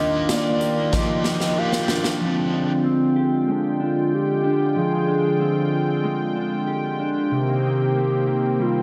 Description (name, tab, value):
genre	dream pop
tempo	94 BPM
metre	4/4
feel	straight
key	F dorian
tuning	A4 = 440 Hz
part	warbly nostalgic lead	melody	0.0-8.8 s	C4 to F5	-26 LUFS	equal	chorus, delay
part	biting overdriven guitar	accompaniment	0.0-2.7 s	F3 to G4	-32 LUFS	equal	harmonic tremolo, lush chorus
part	warm analog pad	sustained chords	0.0-8.8 s	D3 to G5	-27 LUFS	equal	chorus
part	mellow electric guitar	arpeggios	0.0-8.8 s	C3 to G4	-26 LUFS	equal	lush chorus, delay
part	raw garage drum kit	drums	0.3-2.2 s	hi-hat, kick drum, snare drum, tambourine	-29 LUFS	equal	none
room	moderate concert hall reverb, RT60 2.2 s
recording	none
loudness	-21 LUFS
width	mono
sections	0.0-2.2 A section; 2.2-8.8 A section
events	drum fill 0.9-2.2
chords	0.0 Ebmaj9; 2.2 Fm69; 7.3 Cm7